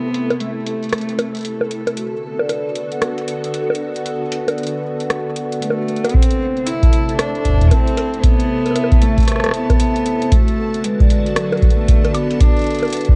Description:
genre	IDM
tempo	115 BPM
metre	4/4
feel	swing 62% on 16ths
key	unclear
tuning	A4 = 440 Hz
part	dark cello	melody	0.0-1.7, 5.6-13.2 s	F#3 to E4	-24 LUFS	equal	digital delay
part	soft string machine	sustained chords	0.0-13.2 s	C3 to A5	-29 LUFS	equal	phaser, ensemble chorus
part	booming analog drum machine	drums	0.1-13.1 s	bongos, hi-hat, rim click	-25 LUFS	equal	low-pass filter on hats, small room ambience, low-pass filter on perc, low-pass filter on snare
part	vibraphone with soft mallets	arpeggios	2.0-13.2 s	F#4 to A5	-26 LUFS	equal	delay
part	electronic kick drum	drums	6.1-13.2 s	none	-15 LUFS	equal	small room ambience
room	digital ambience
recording	worn, warbling old tape, cassette tape, warbly pitch drift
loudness	-17 LUFS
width	mono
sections	0.0-6.1 A section; 6.1-13.2 B section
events	none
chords	0.0 Am; 2.0 Bm7; 6.1 Am; 10.3 Bm7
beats	0.41 0.93 1.45 | 1.97 2.49 3.01 3.54 | 4.06 4.58 5.10 5.62 | 6.14 6.67 7.19 7.71 | 8.23 8.75 9.28 9.80 | 10.32 10.84 11.36 11.88 | 12.40 12.93

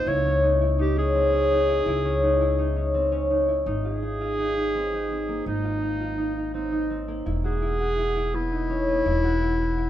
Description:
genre	contemporary instrumental, chamber music in an uneven meter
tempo	167 BPM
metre	5/4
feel	straight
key	Ab major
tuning	A4 = 439 Hz
part	warm clarinet	melody	0.0-9.9 s	Eb4 to Db5	-26 LUFS	right 1 dB	none
part	concert harp	arpeggios	0.0-9.9 s	Bb3 to F#4	-25 LUFS	left 2 dB	none
part	upright bass	bass	0.0-9.9 s	E1 to Db2	-27 LUFS	equal	none
room	light reverb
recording	dark, warm production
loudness	-22 LUFS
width	side -12 dB against mid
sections	0.0-3.7 A section; 3.7-9.9 B section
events	none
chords	0.1 Dbm; 3.7 Ab; 7.3 Esus2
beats	| 0.07 0.43 0.79 1.15 1.50 | 1.86 2.22 2.58 2.94 3.30 | 3.66 4.02 4.38 4.74 5.10 | 5.46 5.82 6.18 6.54 6.90 | 7.26 7.62 7.98 8.34 8.70 | 9.06 9.42 9.78

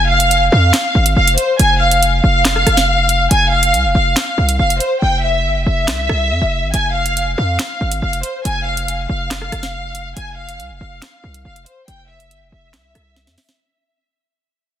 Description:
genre	hip hop, drill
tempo	140 BPM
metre	4/4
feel	half-time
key	F harmonic minor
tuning	A4 = 440 Hz
part	warm studio violin section	melody	0.0-13.6 s	C5 to Ab5	-16 LUFS	left 1 dB	low-pass filter, digital delay
part	hard-hitting 808-style bass	bass	0.0-13.4 s	F1 to F2	-17 LUFS	equal	none
part	drill drum kit	drums	0.2-13.6 s	handclaps, hi-hat, rim click, snare drum	-18 LUFS	right 2 dB	overdrive
room	digital ambience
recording	dense, heavily limited modern master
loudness	-13 LUFS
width	side -10 dB against mid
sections	0.0-13.6 A section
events	fade-out 2.6-13.6; break 5.0-6.7; drum fill 13.2-13.6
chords	0.0 N.C.; 3.3 F5; 5.0 C/F; 6.7 N.C.; 10.2 F5; 11.9 C/F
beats	0.31 0.74 1.17 | 1.59 2.02 2.45 2.88 | 3.31 3.74 4.17 4.59 | 5.02 5.45 5.88 6.31 | 6.74 7.17 7.59 8.02 | 8.45 8.88 9.31 9.74 | 10.16 10.59 11.02 11.45 | 11.88 12.31 12.74 13.16

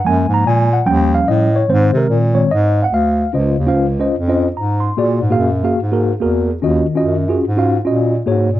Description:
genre	uptempo gospel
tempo	146 BPM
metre	4/4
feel	swing 60% on 8ths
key	Db major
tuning	A4 = 440 Hz
part	mellow tine electric piano	accompaniment	0.0-8.6 s	Ab2 to C6	-15 LUFS	equal	medium stereo tremolo
part	mellow bass clarinet	bass	0.1-8.6 s	Db2 to C3	-16 LUFS	equal	none
room	moderate recital hall reverb, RT60 1.6 s, small room ambience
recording	dark, warm production, nothing above 7.9 kHz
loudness	-13 LUFS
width	side -14 dB against mid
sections	0.0-3.3 A section; 3.3-8.6 B section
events	tine electric piano solo 0.0-3.3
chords	0.1 Gbmaj7; 0.9 Eb7; 1.7 Ab; 3.3 Dbmaj9; 5.0 Bb7b13; 6.6 Ebm9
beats	| 0.05 0.46 0.87 1.28 | 1.69 2.10 2.51 2.92 | 3.33 3.74 4.15 4.56 | 4.97 5.39 5.80 6.21 | 6.62 7.03 7.45 7.86 | 8.27

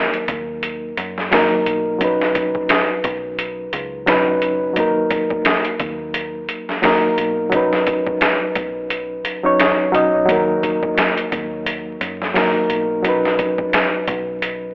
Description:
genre	trip hop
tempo	87 BPM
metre	4/4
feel	swing 57% on 16ths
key	Eb minor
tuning	A4 = 440 Hz
part	reed electric piano	accompaniment	0.0-14.7 s	Gb3 to D#5	-18 LUFS	equal	overdrive, harmonic tremolo, low-pass filter, tape echo
part	deep dub fingered electric bass	bass	0.0-14.7 s	F#1 to Gb2	-34 LUFS	equal	none
part	trip hop sampler-style drum kit	drums	0.1-14.6 s	hi-hat, kick drum, snare drum	-19 LUFS	equal	overdrive
room	light reverb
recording	dry, gritty hardware recording, vinyl crackle, telephone sound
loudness	-16 LUFS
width	side -28 dB against mid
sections	0.0-14.7 A section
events	filter sweep on reed electric piano 0.0-14.7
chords	0.0 Ebm; 2.0 Badd9; 4.8 Ebm; 7.5 Badd9; 10.3 Ebm; 13.0 Badd9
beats	0.63 1.32 | 2.01 2.70 3.39 4.08 | 4.77 5.46 6.15 6.84 | 7.53 8.22 8.90 9.60 | 10.29 10.97 11.66 12.35 | 13.04 13.73 14.42

